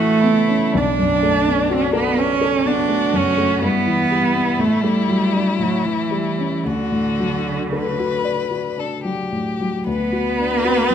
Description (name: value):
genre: classical, slow romantic movement for piano trio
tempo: 54-64 BPM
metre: 3/4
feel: rubato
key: D major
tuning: A4 = 440 Hz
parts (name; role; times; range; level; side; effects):
- rich violin; melody; 0.0-10.9 s; D4 to B4; -24 LUFS; left 8 dB; none
- rich cello; second line; 0.0-10.9 s; D3 to D4; -19 LUFS; right 4 dB; none
- dark grand piano; accompaniment; 0.0-10.9 s; B1 to D5; -21 LUFS; left 2 dB; none
room: moderate recital hall reverb, RT60 1.3 s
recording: close, detailed microphones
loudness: -16 LUFS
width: side -8 dB against mid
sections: 0.0-9.9 A section; 9.9-10.9 B section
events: none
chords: 0.0 Aadd9; 0.8 Bm7; 3.6 Em/G; 4.6 D/A; 5.6 A7; 6.6 D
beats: | 0.75 1.71 2.66 | 3.63 4.60 5.60 | 6.65 7.72 8.78 | 9.86 10.90